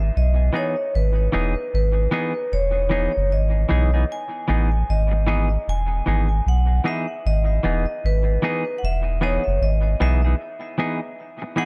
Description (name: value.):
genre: roots reggae.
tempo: 76 BPM.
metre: 4/4.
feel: swing 63% on 16ths.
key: E major.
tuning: A4 = 440 Hz.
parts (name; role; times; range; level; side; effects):
vibraphone with medium hard mallets; melody; 0.0-11.7 s; B4 to G#5; -29 LUFS; equal; tape echo.
soft dub sub bass; bass; 0.0-10.3 s; E1 to B1; -22 LUFS; equal; none.
semi-hollow electric guitar; accompaniment; 0.5-11.7 s; E3 to G#4; -29 LUFS; equal; tape echo.
room: light reverb.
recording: echo-heavy mix, lossy compression artefacts.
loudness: -21 LUFS.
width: mono.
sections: 0.0-11.7 A section.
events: break 10.4-11.7.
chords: 0.0 Emaj7.